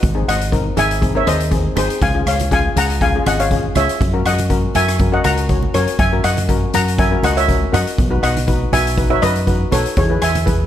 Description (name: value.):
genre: calypso.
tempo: 121 BPM.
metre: 4/4.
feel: swing 53% on 16ths.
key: unclear.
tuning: A4 = 438 Hz.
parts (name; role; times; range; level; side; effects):
steel pan; melody; 0.0-10.7 s; G#4 to A#5; -19 LUFS; equal; none.
fingered electric bass; bass; 0.0-10.6 s; G#1 to F#2; -19 LUFS; equal; none.
street-band drum kit; drums; 0.0-10.6 s; hi-hat, kick drum, rim click; -20 LUFS; equal; none.
congas; percussion; 0.0-10.5 s; none; -23 LUFS; right 4 dB; none.
steel pan; accompaniment; 0.1-10.6 s; B#3 to C#5; -22 LUFS; left 4 dB; none.
room: light reverb.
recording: lossy compression artefacts.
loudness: -14 LUFS.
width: side -11 dB against mid.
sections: 0.0-10.7 A section.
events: none.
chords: 0.0 G#7; 2.0 C#; 4.0 F#7; 8.0 B; 10.0 E.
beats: | 0.03 0.53 1.02 1.52 | 2.02 2.51 3.01 3.51 | 4.00 4.50 5.00 5.50 | 6.00 6.49 6.99 7.49 | 7.99 8.48 8.98 9.48 | 9.98 10.47.